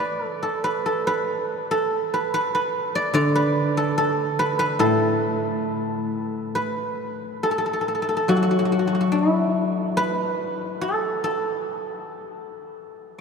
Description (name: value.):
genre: chinese traditional, Chinese solo plucked strings.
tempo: 67-74 BPM.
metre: 2/4.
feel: rubato.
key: A zhi mode.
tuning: A4 = 440 Hz.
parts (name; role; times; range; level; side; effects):
guzheng; solo; 0.0-13.2 s; A2 to D5; -21 LUFS; equal; none.
room: wet cathedral reverb, RT60 5.4 s.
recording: recorded in a church or concert hall.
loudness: -21 LUFS.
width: side -5 dB against mid.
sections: 0.0-6.6 A section; 6.6-13.2 B section.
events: none.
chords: none.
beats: 0.64 | 1.50 2.34 | 3.15 3.97 | 4.81 5.68 | 6.57 7.44 | 8.31 9.14 | 9.98 10.82 | 11.66 12.53.